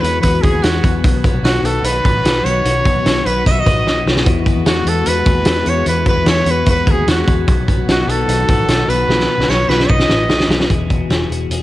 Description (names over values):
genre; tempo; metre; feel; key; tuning
jangly indie pop; 149 BPM; 4/4; straight; E major; A4 = 440 Hz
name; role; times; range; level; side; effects
clear trumpet; melody; 0.0-10.5 s; F#4 to E5; -18 LUFS; equal; cassette tape, tape echo
glockenspiel with hard plastic mallets; second line; 0.0-10.5 s; F#6 to E7; -27 LUFS; right 12 dB; cassette tape
dark studio string section; sustained chords; 0.0-10.7 s; D#3 to F#4; -25 LUFS; left 1 dB; cassette tape
twelve-string electric guitar; arpeggios; 0.0-11.6 s; B2 to B4; -22 LUFS; left 8 dB; cassette tape
vintage muted fingered electric bass; bass; 0.0-11.6 s; E1 to E2; -20 LUFS; equal; none
loose indie drum kit; drums; 0.0-11.6 s; hi-hat, kick drum, snare drum; -16 LUFS; equal; cassette tape
room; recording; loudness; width
studio reverb; home recording on cassette; -12 LUFS; side -15 dB against mid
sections
0.0-10.7 A section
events
drum fill 3.9-4.3, 9.1-10.7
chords
0.0 Eadd9; 1.0 B; 4.3 Eadd9; 7.5 B; 10.7 Eadd9